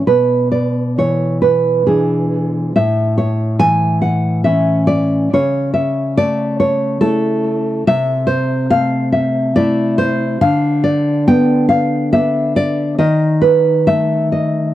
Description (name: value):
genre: romantic piece for solo classical guitar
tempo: 70 BPM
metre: 3/4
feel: rubato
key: A major, A minor from 7.9 s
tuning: A4 = 440 Hz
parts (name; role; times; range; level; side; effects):
- nylon-string guitar; solo; 0.0-14.7 s; A2 to G#5; -13 LUFS; equal; tape echo
room: small room ambience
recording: dry, close 1970s-style studio recording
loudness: -13 LUFS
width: side -13 dB against mid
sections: 0.0-14.7 A section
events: none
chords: 0.1 E7/B; 2.8 A; 5.3 A/C#; 7.9 Am/C; 10.4 Dm69; 13.0 B7/D#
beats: | 0.07 0.98 1.87 | 2.76 3.62 4.47 | 5.33 6.18 7.03 | 7.88 8.71 9.56 | 10.40 11.27 12.13 | 12.99 13.86